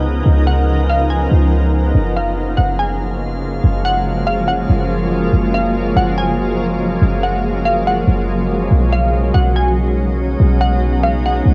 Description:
hip hop; 142 BPM; 4/4; half-time; F# major; A4 = 435 Hz
glassy wavetable pluck; melody; 0.0-11.5 s; E#5 to G#5; -23 LUFS; equal; chorus, low-pass filter, cassette tape, analog delay
shimmering ambient pad; sustained chords; 0.0-11.5 s; C#3 to A#4; -21 LUFS; equal; chorus, built-in reverb, cassette tape
clean 808-style bass; bass; 0.0-11.5 s; F#1 to C#2; -18 LUFS; equal
drifting glass-harmonics texture; texture; 0.0-11.5 s; E#3 to E#6; -31 LUFS; equal; chorus, built-in reverb, cassette tape
light reverb; home recording on cassette; -16 LUFS; mono
0.0-1.9 A section; 1.9-11.5 B section
0.0 C#13; 1.9 F#maj9; 8.7 B69

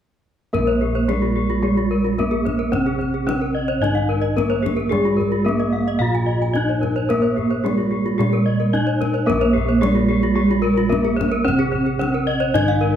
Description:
Balinese gamelan; 110 BPM; 4/4; straight; Bb slendro; A4 = 441 Hz
gamelan-type bronze metallophone; melody; 0.5-13.0 s; Ab3-45c to F4+25c; -21 LUFS; right 2 dB
gamelan-type bronze metallophone; arpeggios; 0.5-13.0 s; Ab4-45c to F5+25c; -25 LUFS; left 7 dB
gamelan-type bossed gongs; bass; 0.5-13.0 s; Bb1 to Bb4; -23 LUFS; equal
kendang; percussion; 0.5-12.8 s; -30 LUFS; left 5 dB
gamelan-type bronze metallophone; accompaniment; 0.6-13.0 s; C3+30c to Bb3; -27 LUFS; right 2 dB
gamelan-type bronze metallophone; arpeggios; 0.7-12.8 s; F4+25c to Ab5-45c; -27 LUFS; right 5 dB
moderate recital hall reverb, RT60 1.6 s; dark, warm production; -17 LUFS; side -9 dB against mid
0.5-13.0 A section

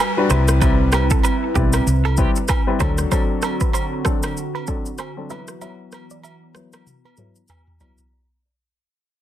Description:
afrobeats; 96 BPM; 4/4; swing 58% on 16ths; A4 = 440 Hz
hollow soft pad; sustained chords; 0.0-8.1 s; D3 to B4; -28 LUFS; right 3 dB; chorus, low-pass filter
direct-recorded clean electric guitar; riff; 0.0-7.9 s; G4 to E5; -28 LUFS; right 10 dB; low-pass filter, digital delay
agogo bells and woodblock; percussion; 0.0-8.0 s; -28 LUFS; right 2 dB
downlifter; sound effects; 0.0-3.1 s; -36 LUFS; equal
warm baby grand piano; accompaniment; 0.2-8.0 s; F#3 to B4; -24 LUFS; left 4 dB; low-pass filter
hollow-body short-scale fingered electric bass; bass; 0.3-3.0 s; B1 to D2; -18 LUFS; equal
afro-pop drum kit; drums; 0.3-8.1 s; kick drum, rim click, shaker, toms; -20 LUFS; equal; overdrive
little or no reverb; dense, heavily limited modern master; -16 LUFS; side -12 dB against mid
0.0-8.1 A section
fade-out 0.0-8.1; filter sweep 0.0-8.1; drum fill 6.9-8.1
0.3 Cmaj7; 2.8 D7; 5.3 Esus2

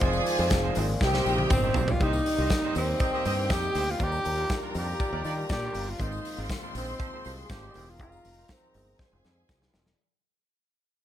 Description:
disco; 120 BPM; 4/4; straight; C minor; A4 = 440 Hz
breathy tenor saxophone; melody; 0.0-9.7 s; Bb2 to Ab4; -31 LUFS; right 1 dB; low-pass filter
clear symphonic string section; second line; 0.0-10.0 s; Eb4 to C6; -35 LUFS; left 1 dB
electric guitar at the edge of break-up; accompaniment; 0.0-9.9 s; G3 to C5; -40 LUFS; right 5 dB; low-pass filter
overdriven tine electric piano; accompaniment; 0.0-10.0 s; Eb3 to Ab4; -39 LUFS; left 4 dB; low-pass filter
dark French horn section; sustained chords; 0.0-10.0 s; C3 to Ab4; -40 LUFS; left 1 dB
warm horn section; stabs; 0.0-9.8 s; F3 to Eb5; -38 LUFS; right 2 dB; low-pass filter
fingered electric bass; bass; 0.0-9.9 s; E1 to Eb3; -31 LUFS; equal
modern studio drum kit; drums; 0.0-10.0 s; hi-hat, kick drum, snare drum, toms; -30 LUFS; equal
tambourine; percussion; 0.1-10.0 s; -47 LUFS; left 9 dB
little or no reverb; -25 LUFS; side -11 dB against mid
0.0-2.0 A section; 2.0-10.0 B section
drum fill 1.0-2.0, 9.0-10.0; fade-out 2.0-10.0; filter sweep 2.0-10.0
0.0 Fm7; 1.0 Cm7; 4.0 Ebmaj9; 6.0 Ab69; 8.0 Fm7

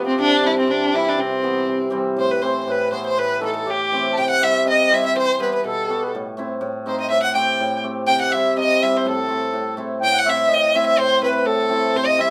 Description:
klezmer; 123 BPM; 2/4; straight; A dorian sharp4; A4 = 440 Hz
rich violin; melody; 0.0-12.3 s; C4 to G5; -22 LUFS; equal
mellow accordion; second line; 0.0-12.3 s; C4 to A5; -26 LUFS; equal
hammered dulcimer; accompaniment; 0.0-12.3 s; A2 to G4; -25 LUFS; equal
moderate studio reverb, RT60 0.6 s; -19 LUFS; mono
0.0-2.2 A section; 2.2-10.0 B section; 10.0-12.3 B section
speeding up 0.0-12.3
0.2 C; 2.2 Am; 4.2 C; 5.1 Em; 6.1 Am; 8.1 C; 9.0 Am

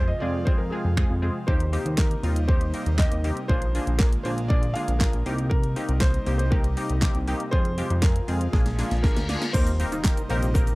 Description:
dance-pop; 119 BPM; 4/4; straight; Eb major; A4 = 440 Hz
felt-muted upright piano; melody; 0.0-10.8 s; Ab4 to F5; -33 LUFS; equal
funky polysynth comp; accompaniment; 0.0-10.7 s; Ab3 to Bb4; -31 LUFS; left 1 dB; chorus, sidechain pumping
airy breathy pad; sustained chords; 0.0-10.8 s; C3 to F4; -35 LUFS; equal; chorus, sidechain pumping
chorused synth bass; bass; 0.0-10.8 s; Bb1 to Eb3; -25 LUFS; equal; sidechain pumping
pop drum kit; drums; 0.5-10.8 s; crash cymbal, finger snaps, handclaps, hi-hat, kick drum, shaker, snare drum; -23 LUFS; equal
reverse cymbal and impact; sound effects; 8.7-10.8 s; -36 LUFS; left 1 dB
egg shaker; percussion; 9.5-10.8 s; -46 LUFS; right 3 dB
little or no reverb; dark, warm production; -21 LUFS; side -22 dB against mid
0.0-9.5 A section; 9.5-10.8 B section
drum fill 8.5-9.5; reverse cymbal 8.7-9.5; impact 9.5-10.8
0.0 Fm; 1.5 Eb6; 3.5 Bb7; 5.3 Cm7; 7.5 Fm; 8.5 Bb7; 9.5 Eb6

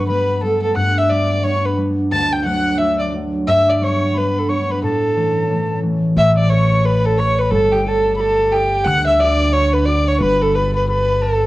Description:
celtic folk, Celtic hornpipe; 178 BPM; 4/4; swing 62% on 8ths; A4 = 441 Hz
dark fiddle; melody; 0.0-11.5 s; G4 to A5; -17 LUFS; equal; plate reverb
reedy mid whistle; second line; 0.0-11.5 s; G5 to A6; -24 LUFS; left 2 dB
concert harp; accompaniment; 0.0-11.5 s; D2 to D5; -20 LUFS; equal
upright bass; bass; 6.2-11.5 s; G1 to D2; -19 LUFS; equal
light reverb; worn, warbling old tape, cassette tape, warbly pitch drift; -14 LUFS; side -17 dB against mid
0.0-6.2 A section; 6.2-11.5 A section
0.0 Gadd9; 2.1 D; 3.5 G; 4.8 A; 6.2 Aadd9; 7.5 Gsus2; 8.9 D; 10.2 Gadd9

